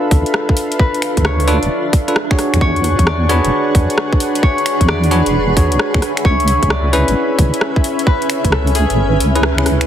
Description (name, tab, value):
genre	UK garage, two-step garage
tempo	132 BPM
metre	4/4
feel	swing 66% on 16ths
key	unclear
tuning	A4 = 440 Hz
part	concert harp	melody	0.0-9.9 s	G#4 to D5	-20 LUFS	left 2 dB	ping-pong delay
part	warm analog pad	sustained chords	0.0-9.8 s	D4 to C#6	-26 LUFS	equal	chorus, tremolo, sidechain pumping
part	bell-like tine electric piano	stabs	0.0-9.9 s	C#4 to C#5	-20 LUFS	equal	digital delay
part	granular cloud pad	texture	0.0-9.9 s	C#4 to C#6	-22 LUFS	right 1 dB	built-in reverb, sidechain pumping
part	deep soft wobble bass	bass	0.1-9.9 s	D1 to E2	-16 LUFS	equal	chorus
part	electronic kick drum	drums	0.1-8.5 s	none	-13 LUFS	equal	studio reverb
part	garage drum kit	drums	0.1-9.9 s	finger snaps, hi-hat, rim click	-20 LUFS	equal	studio reverb
room	light reverb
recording	heavily compressed radio sound, multiband compression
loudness	-12 LUFS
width	side -10 dB against mid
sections	0.0-9.9 A section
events	kick drops out 9.0-9.9; band accent 9.4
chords	0.0 Dm6; 2.4 E13; 6.0 C#m7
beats	0.34 | 0.80 1.25 1.70 2.16 | 2.61 3.07 3.52 3.98 | 4.43 4.89 5.34 5.79 | 6.25 6.70 7.16 7.61 | 8.07 8.52 8.98 9.43